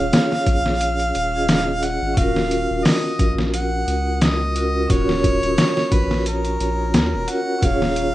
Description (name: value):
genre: trip hop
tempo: 88 BPM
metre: 4/4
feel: swing 55% on 16ths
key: Eb minor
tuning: A4 = 439 Hz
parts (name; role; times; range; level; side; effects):
- warm harmonica; melody; 0.0-8.1 s; Bb4 to Gb5; -24 LUFS; equal; tape echo
- vibraphone with medium mallets; accompaniment; 0.0-8.1 s; Db4 to Eb5; -23 LUFS; equal; tremolo, tape echo
- soft dub sub bass; bass; 0.0-8.1 s; Eb1 to Eb2; -25 LUFS; equal; tube saturation
- trip hop sampler-style drum kit; drums; 0.1-8.1 s; hi-hat, kick drum, snare drum; -20 LUFS; equal; overdrive
room: light reverb, small room reverb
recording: rough home demo mix, vinyl crackle, nothing above 10.4 kHz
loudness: -17 LUFS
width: side -15 dB against mid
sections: 0.0-8.1 A section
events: none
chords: 0.0 Db/Eb; 2.2 Ebm7; 7.6 Db/Eb